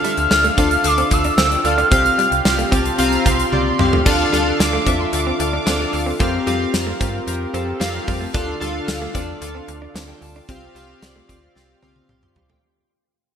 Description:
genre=1980s-style pop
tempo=112 BPM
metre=4/4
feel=straight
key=D minor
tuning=A4 = 440 Hz
part: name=warm velvety synth lead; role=melody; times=0.0-3.3 s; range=D6 to F6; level=-18 LUFS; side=equal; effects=chorus
part: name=chorused retro synth keys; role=accompaniment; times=0.0-12.8 s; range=C3 to D6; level=-21 LUFS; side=left 1 dB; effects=none
part: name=direct-recorded clean electric guitar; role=riff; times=0.0-12.6 s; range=G3 to D4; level=-29 LUFS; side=right 4 dB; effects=lush chorus, digital delay
part: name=gated 80s drum kit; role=drums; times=0.0-12.6 s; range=crash cymbal, hi-hat, kick drum, snare drum, tambourine, toms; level=-21 LUFS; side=equal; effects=gated reverb
part: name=slap-like FM bass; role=bass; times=0.2-12.6 s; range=C2 to G2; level=-25 LUFS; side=equal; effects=none
part: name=analog synth brass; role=stabs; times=0.6-12.6 s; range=C4 to C5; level=-28 LUFS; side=equal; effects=chorus, digital delay
part: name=dark studio violin section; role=second line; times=2.2-6.4 s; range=G5 to D6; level=-26 LUFS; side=right 2 dB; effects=digital delay
room=wet lush hall reverb, RT60 2.5 s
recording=bright 1980s-style digital production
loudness=-15 LUFS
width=side -8 dB against mid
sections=0.0-4.1 A section; 4.1-12.6 B section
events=drum fill 3.5-4.1, 11.6-12.6; fade-out 4.1-12.6; synth keys fill 7.5-8.3, 11.8-12.6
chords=0.0 Dm; 1.9 Csus4; 4.1 Dm; 6.2 Fsus2; 8.3 Dm; 10.5 Csus4

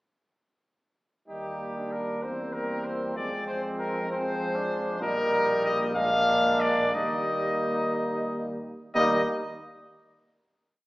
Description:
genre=classical, brass quintet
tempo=59-66 BPM (dotted quarters)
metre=6/8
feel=rubato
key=Eb major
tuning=A4 = 443 Hz
part: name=bright trumpet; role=melody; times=1.3-9.2 s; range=G4 to F5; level=-28 LUFS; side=left 1 dB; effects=none
part: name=clear flugelhorn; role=second line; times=1.3-9.2 s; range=C4 to Eb4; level=-32 LUFS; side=right 1 dB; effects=none
part: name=bright trombone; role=accompaniment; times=1.3-9.2 s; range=F3 to Ab3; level=-34 LUFS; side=right 1 dB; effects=none
part: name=warm French horn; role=accompaniment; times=1.3-9.2 s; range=Ab3 to Bb3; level=-32 LUFS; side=equal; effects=none
part: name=dark tuba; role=bass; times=1.3-9.2 s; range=Bb1 to F2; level=-36 LUFS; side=equal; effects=none
room=wet recital hall reverb, RT60 1.4 s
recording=recorded in a church or concert hall, small speaker sound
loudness=-25 LUFS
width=side -20 dB against mid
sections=1.3-8.9 A section; 8.9-10.9 final chord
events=none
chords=1.3 Eb; 2.2 C7/E; 3.2 Fm; 5.0 Eb/Bb; 6.0 Bb7; 6.9 Eb

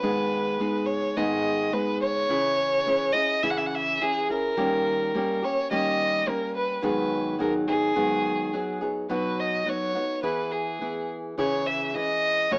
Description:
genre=mexican folk, mariachi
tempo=106 BPM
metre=2/4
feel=straight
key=G# minor, B major from 9.1 s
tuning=A4 = 440 Hz
part: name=dark violin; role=melody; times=0.0-12.6 s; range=G#4 to F#5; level=-25 LUFS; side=equal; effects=none
part: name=nylon-string guitar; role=accompaniment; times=0.0-12.6 s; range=F#2 to G#4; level=-27 LUFS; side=equal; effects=none
room=moderate studio reverb, RT60 0.6 s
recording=small speaker sound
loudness=-23 LUFS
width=side -33 dB against mid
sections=0.0-9.1 A section; 9.1-12.6 B section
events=none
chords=0.0 G#m; 2.3 C#m; 4.6 D#7; 6.8 G#m7; 9.1 B; 10.2 E; 11.4 C#m

